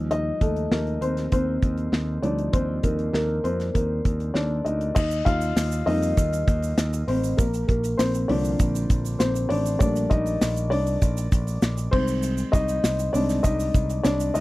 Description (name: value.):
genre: piano-driven pop.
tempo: 99 BPM.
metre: 4/4.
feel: straight.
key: unclear.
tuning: A4 = 437 Hz.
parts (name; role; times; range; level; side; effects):
dark upright piano; accompaniment; 0.0-14.4 s; D3 to F5; -25 LUFS; left 1 dB; none.
picked electric bass; bass; 0.0-14.4 s; A1 to F2; -26 LUFS; equal; none.
modern studio drum kit; drums; 0.1-14.4 s; crash cymbal, hi-hat, kick drum, snare drum; -24 LUFS; equal; none.
tube shaker; percussion; 5.0-14.4 s; none; -41 LUFS; right 14 dB; none.
room: little or no reverb.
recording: dry, close 1970s-style studio recording.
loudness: -21 LUFS.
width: side -18 dB against mid.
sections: 0.0-5.0 A section; 5.0-14.4 B section.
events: upright piano solo 0.0-5.0, 5.0-14.4.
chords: 0.0 Ebadd9; 5.0 Eb; 7.4 Bb; 9.8 Gmadd9/Bb; 11.9 Ab/C.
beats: | 0.11 0.72 1.32 1.93 | 2.54 3.14 3.75 4.36 | 4.96 5.57 6.17 6.78 | 7.38 7.99 8.60 9.20 | 9.81 10.41 11.02 11.62 | 12.23 12.84 13.44 14.05.